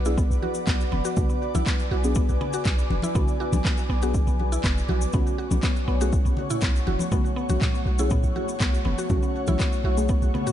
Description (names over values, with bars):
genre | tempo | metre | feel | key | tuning
afro house | 121 BPM | 4/4 | straight | B dorian | A4 = 440 Hz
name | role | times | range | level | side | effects
ethereal airy pad | sustained chords | 0.0-10.5 s | A3 to D6 | -31 LUFS | left 1 dB | ensemble chorus, built-in reverb, sidechain pumping
deep mellow chord stab | stabs | 0.0-10.5 s | A3 to G#4 | -33 LUFS | left 1 dB | chorus, sidechain pumping, analog delay
warm 808-style bass | bass | 0.0-10.3 s | F#1 to B1 | -25 LUFS | equal | sidechain pumping
mallet-like synth pluck | arpeggios | 0.1-10.5 s | B3 to F#4 | -31 LUFS | equal | chorus, sidechain pumping, analog delay
cabasa | percussion | 0.1-10.5 s | none | -40 LUFS | left 5 dB | none
electronic kick drum | drums | 0.2-10.2 s | none | -24 LUFS | equal | none
congas | percussion | 0.4-10.4 s | none | -32 LUFS | left 2 dB | none
afro-pop drum kit | drums | 0.7-10.5 s | handclaps, toms | -32 LUFS | equal | none
room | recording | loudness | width
light reverb | echo-heavy mix, nothing above 11.0 kHz | -21 LUFS | side -11 dB against mid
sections
0.0-10.5 A section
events
none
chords
0.0 Bm; 5.1 F#m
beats
0.18 0.67 | 1.17 1.66 2.16 2.66 | 3.15 3.65 4.14 4.64 | 5.13 5.63 6.13 6.62 | 7.12 7.61 8.11 8.61 | 9.10 9.60 10.09